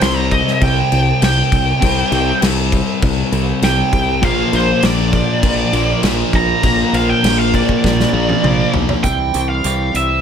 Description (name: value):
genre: quiet-loud alternative rock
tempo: 100 BPM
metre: 4/4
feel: straight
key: C mixolydian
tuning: A4 = 440 Hz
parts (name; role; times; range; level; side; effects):
- high-gain lead guitar; melody; 0.0-10.2 s; C5 to C6; -18 LUFS; right 1 dB; distortion, slapback echo
- fuzz guitar; riff; 0.0-9.0 s; Bb2 to C4; -18 LUFS; left 1 dB; distortion
- fingered electric bass; bass; 0.0-10.2 s; Bb1 to C2; -19 LUFS; equal; none
- loose indie drum kit; drums; 0.0-10.1 s; crash cymbal, hi-hat, kick drum, snare drum, toms; -18 LUFS; equal; none
- sludgy distorted guitar; riff; 4.2-9.0 s; Bb2 to Bb3; -20 LUFS; left 1 dB; overdrive
- twelve-string electric guitar; arpeggios; 9.0-10.2 s; C3 to E4; -22 LUFS; right 7 dB; none
room: light reverb, small room ambience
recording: none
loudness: -12 LUFS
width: side -8 dB against mid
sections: 0.0-9.0 A section; 9.0-10.2 B section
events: lead electric guitar solo 0.0-9.0; drum fill 7.8-9.0; half time 9.0-10.2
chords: 0.0 C5; 4.2 Bb; 9.0 C